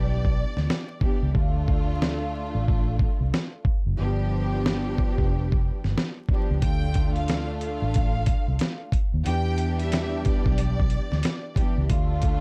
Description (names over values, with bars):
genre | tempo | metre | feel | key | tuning
hip hop, boom-bap hip-hop | 91 BPM | 4/4 | swing 62% on 16ths | D dorian | A4 = 439 Hz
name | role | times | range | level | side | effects
warm studio violin section | melody | 0.0-1.3, 6.6-11.9 s | D5 to G5 | -38 LUFS | equal | digital delay
warm studio string section | accompaniment | 0.0-12.4 s | E3 to G4 | -33 LUFS | equal | none
vintage muted fingered electric bass | bass | 0.0-12.4 s | F1 to E2 | -28 LUFS | equal | none
dusty soul sampler-style drum kit | drums | 0.2-12.4 s | hi-hat, kick drum, snare drum | -27 LUFS | equal | vintage 12-bit sampler grit
room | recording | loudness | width
light reverb | dark, warm production, vinyl crackle | -25 LUFS | mono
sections
0.0-12.4 A section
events
break 0.0-6.6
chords
0.0 Em7; 1.3 Dm; 4.0 G7; 6.6 Dm; 9.3 Em7; 11.9 Dm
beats
0.03 0.69 | 1.35 2.01 2.67 3.33 | 3.99 4.64 5.30 5.96 | 6.62 7.28 7.94 8.60 | 9.26 9.92 10.58 11.24 | 11.90